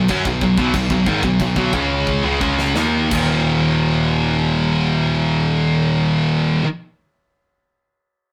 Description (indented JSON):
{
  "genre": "heavy metal",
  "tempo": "83-95 BPM",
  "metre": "4/4",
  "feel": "straight",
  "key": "Eb minor",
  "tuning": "A4 = 443 Hz",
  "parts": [
    { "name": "heavy high-gain guitar", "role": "riff", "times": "0.0-6.7 s", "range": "Eb2 to Eb4", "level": "-22 LUFS", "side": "equal", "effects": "distortion" },
    { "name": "sludgy distorted guitar", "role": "riff", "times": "0.0-6.7 s", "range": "Eb2 to Eb4", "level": "-20 LUFS", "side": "equal", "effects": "overdrive" },
    { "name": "growling picked electric bass", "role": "bass", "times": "0.0-6.6 s", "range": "Eb1 to F#2", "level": "-30 LUFS", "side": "equal", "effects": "overdrive" },
    { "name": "tight metal drum kit", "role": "drums", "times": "0.1-3.3 s", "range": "crash cymbal, kick drum, snare drum", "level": "-29 LUFS", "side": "equal", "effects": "none" }
  ],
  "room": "moderate studio reverb, RT60 0.5 s",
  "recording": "rough rehearsal-room recording, tube saturation",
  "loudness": "-18 LUFS",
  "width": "mono",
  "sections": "0.0-3.5 A section; 3.5-6.4 B section",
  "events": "slowing down 0.0-3.5; drum fill 2.1-3.5",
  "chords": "0.0 B5; 3.1 Eb5"
}